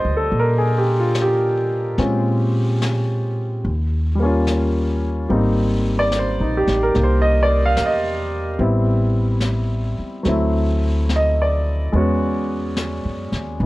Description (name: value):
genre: jazz ballad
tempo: 72 BPM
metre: 4/4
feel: swing 68% on 8ths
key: unclear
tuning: A4 = 440 Hz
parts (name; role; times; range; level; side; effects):
- warm grand piano; accompaniment; 0.0-13.7 s; F#3 to F5; -20 LUFS; equal; none
- upright bass; bass; 0.0-13.7 s; Ab1 to Bb2; -20 LUFS; equal; none
- jazz brush drum kit; drums; 0.3-13.7 s; brushed snare drum, hi-hat, snare drum; -30 LUFS; left 2 dB; none
room: little or no reverb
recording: worn, warbling old tape, cassette tape, warbly pitch drift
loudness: -17 LUFS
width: side -19 dB against mid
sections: 0.0-13.7 A section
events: none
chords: 0.0 Ebmaj7; 2.0 Bbm7; 3.6 Eb9; 5.3 Abmaj9; 8.6 Am7; 10.3 D9; 11.9 E69